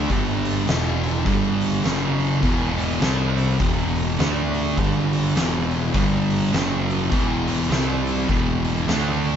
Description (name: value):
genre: stoner and doom metal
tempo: 102 BPM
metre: 4/4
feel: swing 61% on 8ths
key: E minor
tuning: A4 = 441 Hz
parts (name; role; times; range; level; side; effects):
- thick fuzz guitar; riff; 0.0-9.4 s; E2 to D4; -25 LUFS; left 9 dB; distortion
- thick fuzz guitar; riff; 0.0-9.4 s; E2 to D4; -23 LUFS; right 6 dB; distortion
- fuzz picked electric bass; bass; 0.0-9.4 s; E1 to D2; -26 LUFS; left 1 dB; overdrive
- oversized low-tuned drum kit; drums; 0.1-9.3 s; hi-hat, kick drum, snare drum; -25 LUFS; equal; none
room: light reverb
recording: band playing live in one room, nothing above 7.7 kHz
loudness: -19 LUFS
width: side -8 dB against mid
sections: 0.0-9.4 A section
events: none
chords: 0.1 G5; 0.7 E5; 1.3 G5; 1.9 F#5; 2.4 E5; 3.0 C5; 3.6 E5; 4.2 D5; 4.8 G5; 5.4 E5; 5.9 G5; 6.5 F#5; 7.1 E5; 7.7 C5; 8.3 E5